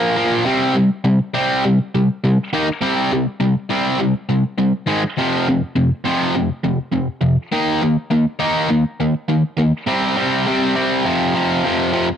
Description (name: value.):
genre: punk.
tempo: 204 BPM.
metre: 4/4.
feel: straight.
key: C minor.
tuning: A4 = 440 Hz.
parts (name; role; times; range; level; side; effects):
distorted electric guitar; solo; 0.0-12.1 s; F2 to Eb4; -15 LUFS; equal; overdrive, cassette tape.
room: little or no reverb.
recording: home recording on cassette.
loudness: -16 LUFS.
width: side -8 dB against mid.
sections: 0.5-9.9 A section; 9.9-12.2 B section.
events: none.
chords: 0.5 C5; 2.5 Eb5; 2.7 N.C.; 2.8 C5; 4.9 Ab5; 5.0 N.C.; 5.2 F5; 7.4 Eb5; 9.9 C5; 11.1 F5.